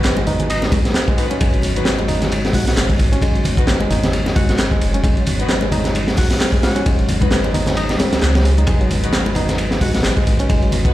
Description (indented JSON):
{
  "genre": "breakbeat, breaks",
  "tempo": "132 BPM",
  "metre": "4/4",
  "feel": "swing 57% on 16ths",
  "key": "unclear",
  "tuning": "A4 = 440 Hz",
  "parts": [
    { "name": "mellow tonewheel organ", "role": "sustained chords", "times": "0.0-10.9 s", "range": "G#3 to C#5", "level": "-27 LUFS", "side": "right 1 dB", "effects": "chorus vibrato, fast rotary speaker, sidechain pumping" },
    { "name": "reed electric piano", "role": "riff", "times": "0.0-10.9 s", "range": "F#3 to G#4", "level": "-23 LUFS", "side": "left 1 dB", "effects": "ping-pong delay" },
    { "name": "saturated sub bass", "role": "bass", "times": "0.0-10.9 s", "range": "F#1 to C#2", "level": "-20 LUFS", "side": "equal", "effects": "none" },
    { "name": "crunchy breakbeat drum kit", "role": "drums", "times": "0.0-10.9 s", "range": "hi-hat, kick drum, ride cymbal, snare drum", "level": "-18 LUFS", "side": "equal", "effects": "none" },
    { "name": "punchy analog drum machine", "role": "drums", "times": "0.0-10.9 s", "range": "handclaps, hi-hat", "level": "-28 LUFS", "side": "right 1 dB", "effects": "none" },
    { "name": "congas", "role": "percussion", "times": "0.2-10.8 s", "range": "none", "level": "-26 LUFS", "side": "left 1 dB", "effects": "none" },
    { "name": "warm alto saxophone", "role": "melody", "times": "0.5-10.0 s", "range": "D#4 to F#4", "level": "-30 LUFS", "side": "equal", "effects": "AM radio sound, ping-pong delay" },
    { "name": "dark studio string section", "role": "stabs", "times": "1.2-10.9 s", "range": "G#3 to B4", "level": "-28 LUFS", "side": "left 4 dB", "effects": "ping-pong delay" }
  ],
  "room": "light reverb",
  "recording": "played on a big sound system in a bare room, large studio reverb",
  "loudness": "-14 LUFS",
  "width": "side -15 dB against mid",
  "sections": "0.0-10.9 A section",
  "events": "none",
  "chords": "0.0 G#m7"
}